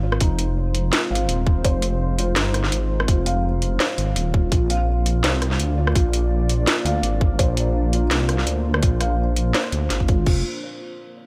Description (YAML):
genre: half-time drum and bass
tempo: 167 BPM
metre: 4/4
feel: swing 53% on 16ths, half-time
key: F dorian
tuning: A4 = 440 Hz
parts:
  - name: deep dark ambient pad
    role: sustained chords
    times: 0.4-10.4 s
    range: Ab3 to D5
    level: -33 LUFS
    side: equal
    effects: chorus, built-in reverb, sidechain pumping
  - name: felt-muted upright piano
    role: arpeggios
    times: 0.0-10.4 s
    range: Eb4 to F5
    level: -30 LUFS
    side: equal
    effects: delay
  - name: dark detuned saw bass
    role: bass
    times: 0.0-10.4 s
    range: Eb1 to D2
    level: -24 LUFS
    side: equal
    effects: none
  - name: drum and bass drum kit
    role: drums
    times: 0.1-10.3 s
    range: crash cymbal, hi-hat, rim click, snare drum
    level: -26 LUFS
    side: equal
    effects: none
  - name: electronic kick drum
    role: drums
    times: 0.2-10.3 s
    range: none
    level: -21 LUFS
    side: equal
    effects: none
room: little or no reverb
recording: none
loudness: -21 LUFS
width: mono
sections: 0.0-10.3 A section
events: drop 0.0-10.3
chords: 0.0 Fm; 4.5 Bb; 10.3 Fm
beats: | 0.21 0.57 0.93 1.28 | 1.64 2.00 2.36 2.72 | 3.08 3.44 3.80 4.16 | 4.52 4.88 5.24 5.60 | 5.96 6.32 6.67 7.03 | 7.39 7.75 8.11 8.47 | 8.83 9.19 9.55 9.91 | 10.27